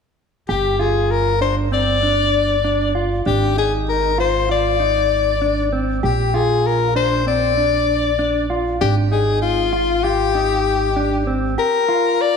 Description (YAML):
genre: progressive instrumental, progressive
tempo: 195 BPM (eighths)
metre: 9/8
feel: straight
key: G phrygian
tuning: A4 = 440 Hz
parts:
  - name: bright soprano saxophone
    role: melody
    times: 0.5-12.4 s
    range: F4 to D5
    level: -18 LUFS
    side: left 6 dB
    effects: none
  - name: mellow electric guitar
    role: arpeggios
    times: 0.5-12.4 s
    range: C4 to G4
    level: -23 LUFS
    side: right 2 dB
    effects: none
  - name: upright bass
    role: bass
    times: 0.5-11.5 s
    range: G1 to Bb1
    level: -22 LUFS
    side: right 3 dB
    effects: none
room: wet echo chamber reverb, RT60 1.7 s, studio reverb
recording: none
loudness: -16 LUFS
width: side -6 dB against mid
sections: 0.5-11.6 A section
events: none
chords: 0.5 G5; 3.3 Fm7/Ab; 6.0 Bb; 8.8 Abmaj7(no3); 11.6 Gm7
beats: | 0.49 0.80 1.11 1.42 1.73 2.03 2.34 2.65 2.96 | 3.27 3.57 3.88 4.19 4.50 4.81 5.12 5.42 5.73 | 6.04 6.35 6.66 6.96 7.27 7.58 7.89 8.20 8.50 | 8.81 9.12 9.43 9.74 10.04 10.35 10.66 10.97 11.28 | 11.58 11.89 12.20